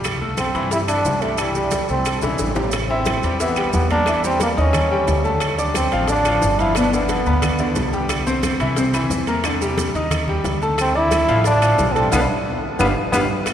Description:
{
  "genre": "Afro-Cuban jazz",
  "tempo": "179 BPM",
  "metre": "4/4",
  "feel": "straight",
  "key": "A minor",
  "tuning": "A4 = 440 Hz",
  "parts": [
    { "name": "bright concert grand piano", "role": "accompaniment", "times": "0.0-13.2 s", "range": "B2 to E6", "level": "-22 LUFS", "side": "left 2 dB", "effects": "none" },
    { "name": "upright bass", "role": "bass", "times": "0.0-13.3 s", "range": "G1 to G2", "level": "-24 LUFS", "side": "equal", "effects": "none" },
    { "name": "claves", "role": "percussion", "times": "0.0-13.5 s", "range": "none", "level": "-34 LUFS", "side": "left 5 dB", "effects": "none" },
    { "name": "congas", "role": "percussion", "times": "0.0-13.5 s", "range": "none", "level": "-29 LUFS", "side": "equal", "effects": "none" },
    { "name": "maracas", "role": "percussion", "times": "0.0-13.5 s", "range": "none", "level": "-33 LUFS", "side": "right 7 dB", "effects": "none" },
    { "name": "timbales", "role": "percussion", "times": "0.0-13.5 s", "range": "none", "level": "-28 LUFS", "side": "right 4 dB", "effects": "none" },
    { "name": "bongos", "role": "percussion", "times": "0.1-13.5 s", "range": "none", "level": "-30 LUFS", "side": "left 3 dB", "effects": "none" },
    { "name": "bright trombone", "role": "melody", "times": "0.4-7.9, 10.8-13.2 s", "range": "G3 to E4", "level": "-21 LUFS", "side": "right 1 dB", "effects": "none" }
  ],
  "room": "wet cathedral reverb, RT60 5.9 s",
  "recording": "recorded in a church or concert hall",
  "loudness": "-16 LUFS",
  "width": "side -9 dB against mid",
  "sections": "0.0-2.7 A section; 2.7-13.5 B section",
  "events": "drum fill 2.2-2.7, 13.0-13.5; band accent 12.1-13.5",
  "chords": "0.0 C6; 2.7 Am9; 4.1 D#13b9; 4.7 D#7; 5.4 Dm7; 6.8 G; 8.1 C; 9.4 D#maj7; 10.1 D#; 10.8 Dm; 12.1 Asus2/B; 12.8 G7"
}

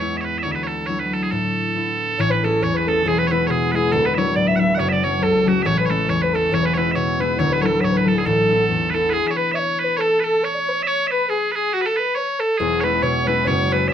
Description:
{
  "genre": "celtic folk, Celtic polka",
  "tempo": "138 BPM",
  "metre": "2/4",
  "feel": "swing 57% on 8ths",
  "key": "A major",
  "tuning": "A4 = 443 Hz",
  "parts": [
    { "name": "loud bright bagpipes", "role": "melody", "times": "0.0-13.9 s", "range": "F#4 to F#5", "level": "-22 LUFS", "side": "right 3 dB", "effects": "none" },
    { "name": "concert harp", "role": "accompaniment", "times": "0.0-13.9 s", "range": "D1 to G#4", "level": "-21 LUFS", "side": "left 2 dB", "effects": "none" },
    { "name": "mellow wooden flute", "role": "second line", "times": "2.2-13.9 s", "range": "F#4 to E5", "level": "-22 LUFS", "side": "left 2 dB", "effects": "none" }
  ],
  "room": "wet studio reverb, RT60 0.6 s",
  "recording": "minimal, uncompressed stereo recording",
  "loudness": "-17 LUFS",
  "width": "side -9 dB against mid",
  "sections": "0.0-2.2 A section; 2.2-9.1 A section; 9.1-13.9 B section",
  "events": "none",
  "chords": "0.4 Dadd9; 1.3 Asus2; 2.2 Amaj7; 3.0 E; 3.9 Dadd9; 4.8 F#m; 5.7 Amaj7; 6.5 E; 7.4 Dadd9; 8.3 Asus2; 9.1 N.C.; 12.6 E6"
}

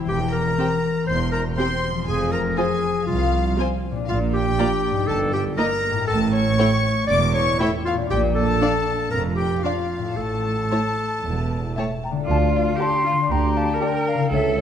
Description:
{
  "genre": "cinematic, playful, whimsical film cue",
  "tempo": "119 BPM",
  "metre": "4/4",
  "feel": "straight",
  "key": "F minor",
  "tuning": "A4 = 438 Hz",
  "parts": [
    { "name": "concert harp", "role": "arpeggios", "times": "0.0-14.6 s", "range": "G2 to D5", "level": "-28 LUFS", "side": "left 7 dB", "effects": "none" },
    { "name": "rich studio violin section", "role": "melody", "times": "0.1-14.2 s", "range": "D5 to D6", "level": "-28 LUFS", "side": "left 4 dB", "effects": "none" },
    { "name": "clear clarinet", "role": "second line", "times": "0.1-12.0 s", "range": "E4 to D5", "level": "-24 LUFS", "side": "left 1 dB", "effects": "none" },
    { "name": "rich studio cello section", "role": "bass", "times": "0.1-14.6 s", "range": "C2 to Bb4", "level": "-27 LUFS", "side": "right 3 dB", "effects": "none" },
    { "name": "rich studio double bass section", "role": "bass", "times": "0.1-14.6 s", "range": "E1 to D2", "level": "-26 LUFS", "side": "right 3 dB", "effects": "none" },
    { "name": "warm studio violin section", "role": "second line", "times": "0.6-14.2 s", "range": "G4 to Bb5", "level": "-31 LUFS", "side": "left 2 dB", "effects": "none" },
    { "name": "rich studio viola section", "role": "accompaniment", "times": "0.6-14.2 s", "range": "A3 to G4", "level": "-28 LUFS", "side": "right 2 dB", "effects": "none" },
    { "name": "xylophone with soft rubber mallets", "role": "melody", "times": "11.8-14.6 s", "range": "C#5 to A5", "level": "-30 LUFS", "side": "left 3 dB", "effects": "none" },
    { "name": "mellow hollow silver concert flute", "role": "second line", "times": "11.8-14.6 s", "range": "E5 to C6", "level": "-24 LUFS", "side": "left 1 dB", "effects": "none" },
    { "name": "mellow tuba", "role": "bass", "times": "12.3-14.6 s", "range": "C#2 to D2", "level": "-27 LUFS", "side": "right 3 dB", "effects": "none" }
  ],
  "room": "wet concert hall reverb, RT60 1.8 s",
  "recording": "dark, warm production",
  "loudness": "-19 LUFS",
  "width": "side -9 dB against mid",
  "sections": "0.0-12.3 A section; 12.3-14.6 B section",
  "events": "none",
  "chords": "0.0 C/E; 2.1 Fm; 4.1 Bb; 5.1 Eb/G; 6.1 A7; 8.1 Bb; 10.2 A; 12.3 Dm; 13.3 Gm/D"
}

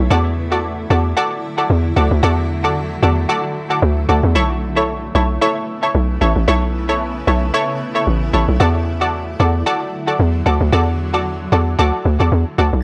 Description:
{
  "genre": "amapiano",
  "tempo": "113 BPM",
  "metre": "4/4",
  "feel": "swing 55% on 16ths",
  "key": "unclear",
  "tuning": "A4 = 441 Hz",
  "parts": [
    { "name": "granular cloud pad", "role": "sustained chords", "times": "0.0-12.8 s", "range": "C#3 to E4", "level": "-28 LUFS", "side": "equal", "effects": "built-in reverb" },
    { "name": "hollow log drum bass", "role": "bass", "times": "0.0-12.8 s", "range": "A1 to E2", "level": "-18 LUFS", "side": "equal", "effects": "none" },
    { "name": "punchy chord stab", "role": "stabs", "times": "0.1-12.7 s", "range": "E4 to D5", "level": "-21 LUFS", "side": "equal", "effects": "chorus, tape echo" }
  ],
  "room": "digital ambience",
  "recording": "dry, gritty hardware recording",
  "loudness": "-17 LUFS",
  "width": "mono",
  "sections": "0.0-12.8 A section",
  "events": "drop 0.0-12.8",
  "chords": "0.1 E9sus4; 4.4 B9sus4; 8.6 E9sus4"
}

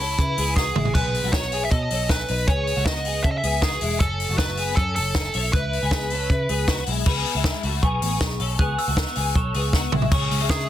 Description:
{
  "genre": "jangly indie pop",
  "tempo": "157 BPM",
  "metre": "4/4",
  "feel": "straight",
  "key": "unclear",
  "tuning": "A4 = 439 Hz",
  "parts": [
    { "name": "nasal lead guitar with a parked wah", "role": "melody", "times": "0.0-6.8, 10.5-10.7 s", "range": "E4 to E5", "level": "-26 LUFS", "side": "right 3 dB", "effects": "overdrive, slapback echo" },
    { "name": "twelve-string electric guitar", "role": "arpeggios", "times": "0.0-10.7 s", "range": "G#3 to C#5", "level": "-28 LUFS", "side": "left 5 dB", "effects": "ensemble chorus, slapback echo" },
    { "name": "vintage muted picked electric bass", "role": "bass", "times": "0.0-10.7 s", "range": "E1 to C#3", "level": "-26 LUFS", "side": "equal", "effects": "none" },
    { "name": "compact cocktail drum kit", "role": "drums", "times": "0.2-10.6 s", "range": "crash cymbal, hi-hat, kick drum, ride cymbal, snare drum, splash cymbal, toms", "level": "-23 LUFS", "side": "equal", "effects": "none" },
    { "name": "glockenspiel with rubber mallets", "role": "second line", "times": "7.1-10.7 s", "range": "B5 to F#6", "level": "-30 LUFS", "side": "right 3 dB", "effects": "none" }
  ],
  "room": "little or no reverb",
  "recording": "dense, heavily limited modern master",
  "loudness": "-20 LUFS",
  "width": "side -12 dB against mid",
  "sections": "0.0-7.1 A section; 7.1-10.1 B section",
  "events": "drum fill 0.6-0.9, 9.7-10.1",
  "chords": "0.0 C#m7; 0.9 Badd9; 2.5 C#7sus4; 4.0 F#m; 5.5 C#m7; 10.1 C#m"
}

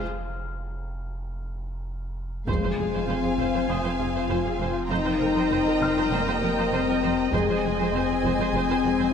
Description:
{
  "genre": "cinematic, hybrid orchestral and electronic film score",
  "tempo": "99 BPM",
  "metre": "4/4",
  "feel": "straight",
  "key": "F minor",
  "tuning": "A4 = 437 Hz",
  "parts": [
    { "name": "rich studio violin section", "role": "second line", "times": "0.0-9.1 s", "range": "F5 to Bb5", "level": "-31 LUFS", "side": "left 2 dB", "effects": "none" },
    { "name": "lush unison pad", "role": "sustained chords", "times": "0.0-9.1 s", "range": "F3 to C5", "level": "-32 LUFS", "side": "equal", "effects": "chorus" },
    { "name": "punchy sub bass", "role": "bass", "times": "0.0-9.1 s", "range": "F1", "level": "-35 LUFS", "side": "right 1 dB", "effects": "none" },
    { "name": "felt-muted upright piano", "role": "texture", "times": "0.0-9.1 s", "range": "F5 to F6", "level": "-39 LUFS", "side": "left 4 dB", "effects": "tape echo" },
    { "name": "clear symphonic viola section", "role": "accompaniment", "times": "2.5-9.1 s", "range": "Ab4 to Eb5", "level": "-31 LUFS", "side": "right 4 dB", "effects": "none" },
    { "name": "warm French horn section", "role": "sustained chords", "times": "2.5-9.1 s", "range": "Ab3 to F4", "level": "-25 LUFS", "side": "left 6 dB", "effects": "none" },
    { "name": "rich symphonic double bass section", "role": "bass", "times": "2.5-8.9 s", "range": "F1", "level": "-34 LUFS", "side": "right 4 dB", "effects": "none" },
    { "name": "warm symphonic cello section", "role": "bass", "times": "2.5-9.1 s", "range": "F2", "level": "-32 LUFS", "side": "right 4 dB", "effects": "none" },
    { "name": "solo taiko drums", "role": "drums", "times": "2.5-3.7, 7.3-8.5 s", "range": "none", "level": "-39 LUFS", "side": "right 1 dB", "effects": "none" },
    { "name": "impact", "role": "sound effects", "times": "2.5-4.9 s", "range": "none", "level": "-34 LUFS", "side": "right 1 dB", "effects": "none" }
  ],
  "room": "moderate concert hall reverb, RT60 2.1 s",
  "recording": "none",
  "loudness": "-22 LUFS",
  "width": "side -7 dB against mid",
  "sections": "0.0-2.5 A section; 2.5-9.1 B section",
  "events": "break 0.1-2.5; drum fill 1.9-2.5; impact 2.5-4.9",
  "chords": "0.0 F5; 2.5 Fm; 4.9 Cm7/F; 7.3 Ab/F"
}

